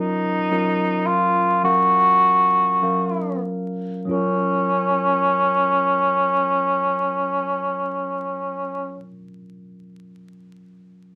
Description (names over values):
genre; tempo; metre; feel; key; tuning
folk; 46-56 BPM; 4/4; straight; F# major; A4 = 437 Hz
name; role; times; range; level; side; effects
mellow cor anglais; melody; 0.0-9.0 s; C#4 to F#4; -21 LUFS; equal; none
mellow tine electric piano; accompaniment; 0.0-11.2 s; F#1 to E#5; -29 LUFS; equal; none
room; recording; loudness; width
wet studio ambience, RT60 0.5 s; vinyl crackle; -20 LUFS; mono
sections
0.0-4.1 A section; 4.1-9.2 B section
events
slowing down 0.0-4.1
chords
0.0 F#maj7